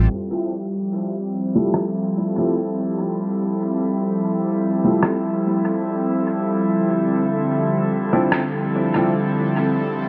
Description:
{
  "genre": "ambient dub",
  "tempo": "73 BPM",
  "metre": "4/4",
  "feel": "swing 54% on 16ths",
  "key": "unclear",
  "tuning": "A4 = 440 Hz",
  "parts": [
    { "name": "airy breathy pad", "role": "sustained chords", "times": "0.0-10.1 s", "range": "D3 to A4", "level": "-23 LUFS", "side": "equal", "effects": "chorus" },
    { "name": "drifting glass-harmonics texture", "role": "texture", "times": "1.2-10.1 s", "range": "E4 to E5", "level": "-29 LUFS", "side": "equal", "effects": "chorus, built-in reverb" },
    { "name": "warm upright piano", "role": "stabs", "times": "1.6-9.1 s", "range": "F3 to E4", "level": "-26 LUFS", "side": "equal", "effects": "low-pass filter, dub echo" },
    { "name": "electronic rim click", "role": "drums", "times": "1.7-8.5 s", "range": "none", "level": "-29 LUFS", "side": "equal", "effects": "overdrive, low-pass filter on hats, studio reverb, low-pass filter on toms, low-pass filter on snare, dub echo" }
  ],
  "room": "wet echo chamber reverb, RT60 1.9 s",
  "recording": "low-pass filter",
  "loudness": "-21 LUFS",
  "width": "mono",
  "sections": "0.1-10.1 A section",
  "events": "filter sweep on drum 0.1-10.1; filter sweep on upright piano 0.1-10.1; filter sweep 0.1-10.1",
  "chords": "0.1 Fmaj9; 6.7 Dm9"
}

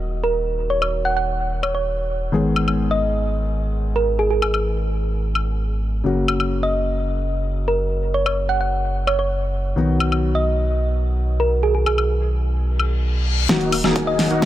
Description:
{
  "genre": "EDM, festival progressive house",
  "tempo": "129 BPM",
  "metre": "4/4",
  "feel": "straight",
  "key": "Eb minor",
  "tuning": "A4 = 445 Hz",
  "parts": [
    { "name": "dark grand piano", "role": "accompaniment", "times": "0.0-14.5 s", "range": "Db3 to Ab4", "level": "-25 LUFS", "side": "left 2 dB", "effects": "sidechain pumping" },
    { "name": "saturated sub bass", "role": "bass", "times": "0.0-14.5 s", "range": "Eb1 to B1", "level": "-22 LUFS", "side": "equal", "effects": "sidechain pumping" },
    { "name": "thumb-piano-like synth pluck", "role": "melody", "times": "0.2-14.2 s", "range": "Ab4 to Gb5", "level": "-23 LUFS", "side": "right 2 dB", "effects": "chorus, dub echo" },
    { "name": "big-room dance drum kit", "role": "drums", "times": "0.8-14.5 s", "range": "hi-hat, snare drum, woodblock", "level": "-23 LUFS", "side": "left 2 dB", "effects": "none" },
    { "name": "reverse cymbal and riser", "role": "sound effects", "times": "12.9-14.5 s", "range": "none", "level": "-29 LUFS", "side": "left 7 dB", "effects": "none" },
    { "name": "big supersaw lead", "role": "riff", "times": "13.5-14.5 s", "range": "Bb3 to Ab4", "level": "-23 LUFS", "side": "right 1 dB", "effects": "sidechain pumping, low-pass filter" },
    { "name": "electronic kick drum", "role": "drums", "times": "13.5-14.5 s", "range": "none", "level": "-26 LUFS", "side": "equal", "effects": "high-pass filter on kick" }
  ],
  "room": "light reverb, digital ambience",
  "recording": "none",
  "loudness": "-18 LUFS",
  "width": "side -13 dB against mid",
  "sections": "0.0-13.5 A section",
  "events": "reverse cymbal 12.9-13.5; drum fill 13.5-14.5",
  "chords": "0.0 Ebm; 2.3 Abm; 6.0 Gb; 9.8 B; 13.5 Ebm"
}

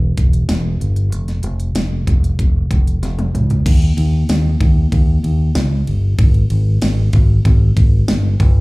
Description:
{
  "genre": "piano-driven pop",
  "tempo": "95 BPM",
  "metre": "4/4",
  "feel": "straight",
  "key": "unclear",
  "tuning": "A4 = 440 Hz",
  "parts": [
    { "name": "fingered electric bass", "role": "bass", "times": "0.0-8.6 s", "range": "E1 to Eb2", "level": "-14 LUFS", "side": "equal", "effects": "none" },
    { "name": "pop drum kit", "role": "drums", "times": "0.2-8.5 s", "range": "crash cymbal, hi-hat, kick drum, ride cymbal, snare drum, toms", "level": "-16 LUFS", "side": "equal", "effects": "none" }
  ],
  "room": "little or no reverb",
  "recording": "live gig heard through the venue's PA, club reverb",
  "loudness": "-13 LUFS",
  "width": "side -23 dB against mid",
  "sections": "0.0-3.7 A section; 3.7-8.6 B section",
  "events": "drum fill 3.0-3.7",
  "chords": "none"
}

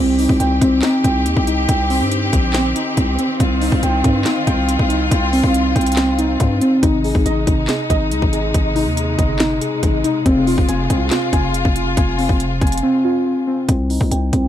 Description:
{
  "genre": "hip hop, trap",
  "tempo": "140 BPM",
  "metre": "4/4",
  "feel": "half-time",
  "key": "C minor",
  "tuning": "A4 = 444 Hz",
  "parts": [
    { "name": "warm studio string section", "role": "sustained chords", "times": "0.0-13.7 s", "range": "C3 to G4", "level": "-23 LUFS", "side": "left 2 dB", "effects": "none" },
    { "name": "muted felt-like synth keys", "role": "arpeggios", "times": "0.0-14.5 s", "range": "C4 to Ab5", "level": "-18 LUFS", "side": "equal", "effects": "chorus, low-pass filter, analog delay" },
    { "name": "growling 808-style bass", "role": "bass", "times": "0.0-14.5 s", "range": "F1 to G2", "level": "-20 LUFS", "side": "equal", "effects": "none" },
    { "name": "trap drum kit", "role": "drums", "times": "0.2-14.4 s", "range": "handclaps, hi-hat, kick drum, snare drum", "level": "-19 LUFS", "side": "equal", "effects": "none" }
  ],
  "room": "light reverb",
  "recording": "dry, gritty hardware recording, transformer saturation",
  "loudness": "-14 LUFS",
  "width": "side -11 dB against mid",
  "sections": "0.0-13.7 A section",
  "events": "silent gap 12.8-13.7",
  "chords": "0.0 Cm; 6.8 Ab; 10.3 Fm; 13.7 Cm"
}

